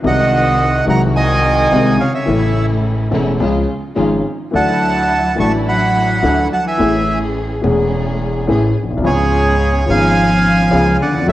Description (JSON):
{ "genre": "tango", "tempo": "107 BPM", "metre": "4/4", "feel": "rubato", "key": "unclear", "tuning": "A4 = 437 Hz", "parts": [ { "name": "dark grand piano", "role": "accompaniment", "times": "0.0-11.3 s", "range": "E1 to A4", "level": "-17 LUFS", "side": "left 2 dB", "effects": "none" }, { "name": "dark chamber string section", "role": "stabs", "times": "0.0-11.3 s", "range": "F#3 to G#4", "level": "-25 LUFS", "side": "right 1 dB", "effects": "none" }, { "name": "upright bass", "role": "bass", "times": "0.0-11.3 s", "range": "E1 to D2", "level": "-19 LUFS", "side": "right 1 dB", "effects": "none" }, { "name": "bandoneon", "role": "melody", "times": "0.1-11.3 s", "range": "G#4 to C#6", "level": "-16 LUFS", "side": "right 2 dB", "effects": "none" }, { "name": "warm cello", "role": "second line", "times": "0.1-11.3 s", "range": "G#2 to A3", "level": "-20 LUFS", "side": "left 1 dB", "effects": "tape echo" } ], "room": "wet large studio reverb, RT60 1.3 s", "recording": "worn, warbling old tape, cassette tape, warbly pitch drift", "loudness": "-12 LUFS", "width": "side -14 dB against mid", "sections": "0.0-11.3 A section", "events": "none", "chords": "0.0 G#7/B#; 2.3 A; 3.4 C#; 4.5 Dadd9; 6.8 Amaj7; 9.0 C#7" }